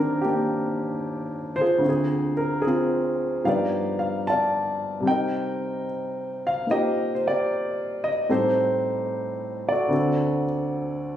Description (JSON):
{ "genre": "jazz ballad", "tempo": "74 BPM", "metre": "4/4", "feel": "swing 69% on 8ths", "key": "unclear", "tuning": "A4 = 438 Hz", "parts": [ { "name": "warm grand piano", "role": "solo", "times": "0.0-11.2 s", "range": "D2 to A5", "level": "-22 LUFS", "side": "equal", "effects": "none" } ], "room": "moderate large studio reverb, RT60 1.2 s", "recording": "recorded on a phone in the room, studio reverb, compression", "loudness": "-22 LUFS", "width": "side -10 dB against mid", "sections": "0.0-11.2 A section", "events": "none", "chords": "0.0 Ebmaj7; 1.8 Dm7b5; 3.4 G7b13; 5.1 Cm9; 8.3 Am7b5; 9.9 D7" }